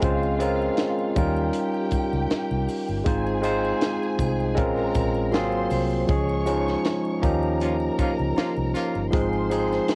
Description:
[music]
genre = lush 1970s-style soul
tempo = 79 BPM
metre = 4/4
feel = swing 54% on 16ths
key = Ab major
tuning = A4 = 440 Hz
[part]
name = warm studio violin section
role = second line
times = 0.0-9.9 s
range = F4 to Db6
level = -36 LUFS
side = equal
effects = cassette tape
[part]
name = barky tine electric piano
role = accompaniment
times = 0.0-9.9 s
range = F3 to C5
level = -26 LUFS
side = equal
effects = overdrive, cassette tape
[part]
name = vintage muted fingered electric bass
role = bass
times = 0.0-9.8 s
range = G1 to Eb2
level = -31 LUFS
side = equal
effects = none
[part]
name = tight funk drum kit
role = drums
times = 0.0-9.9 s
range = hi-hat, kick drum, snare drum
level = -29 LUFS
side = equal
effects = cassette tape
[part]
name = triangle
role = percussion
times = 0.0-9.9 s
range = none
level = -54 LUFS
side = equal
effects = none
[part]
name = mellow horn section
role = stabs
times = 7.6-9.0 s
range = F3 to F4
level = -32 LUFS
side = equal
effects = cassette tape
[part]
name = electric guitar through a small old amp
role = riff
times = 9.1-9.8 s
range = F4 to C5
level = -36 LUFS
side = equal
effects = wah, cassette tape
[sound]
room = little or no reverb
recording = home recording on cassette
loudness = -24 LUFS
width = mono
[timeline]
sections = 0.0-9.9 A section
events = band accent 6.1-9.1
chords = 0.0 Dbmaj7; 1.2 Eb9; 3.1 Ab6; 4.6 Bbm9; 5.3 Ab13; 6.1 Db; 7.2 Eb9; 9.1 Ab6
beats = | 0.03 0.78 1.54 2.30 | 3.06 3.82 4.58 5.33 | 6.09 6.85 7.61 8.37 | 9.13 9.89

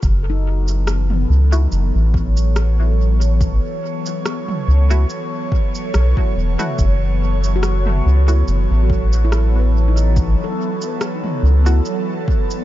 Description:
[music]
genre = ambient dub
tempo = 71 BPM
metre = 4/4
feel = swing 54% on 16ths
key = F# dorian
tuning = A4 = 442 Hz
[part]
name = airy breathy pad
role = sustained chords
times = 0.3-12.6 s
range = E3 to C#5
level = -24 LUFS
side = equal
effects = chorus, phaser
[part]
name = handpan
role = arpeggios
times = 0.0-12.6 s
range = D#4 to B4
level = -30 LUFS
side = left 5 dB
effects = dub echo
[part]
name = round analog bass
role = bass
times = 0.0-11.8 s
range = E1 to C#2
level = -14 LUFS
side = equal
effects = none
[part]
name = electronic kick drum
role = drums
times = 0.0-12.5 s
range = none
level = -18 LUFS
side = equal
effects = overdrive, studio reverb
[part]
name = organic electronic drum kit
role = drums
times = 0.0-12.6 s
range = rim click, shaker, toms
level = -28 LUFS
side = equal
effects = overdrive, studio reverb, dub echo
[part]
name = filtered dub chord stab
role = stabs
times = 1.5-11.8 s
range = A3 to F#4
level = -31 LUFS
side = equal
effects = lush chorus, vintage 12-bit sampler grit, dub echo
[sound]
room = little or no reverb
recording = nothing above 7.5 kHz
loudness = -14 LUFS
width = side -14 dB against mid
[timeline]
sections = 0.0-12.6 A section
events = none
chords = 0.0 F#m7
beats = | 0.03 0.87 1.72 2.56 | 3.40 4.25 5.09 5.94 | 6.79 7.63 8.48 9.32 | 10.17 11.01 11.86

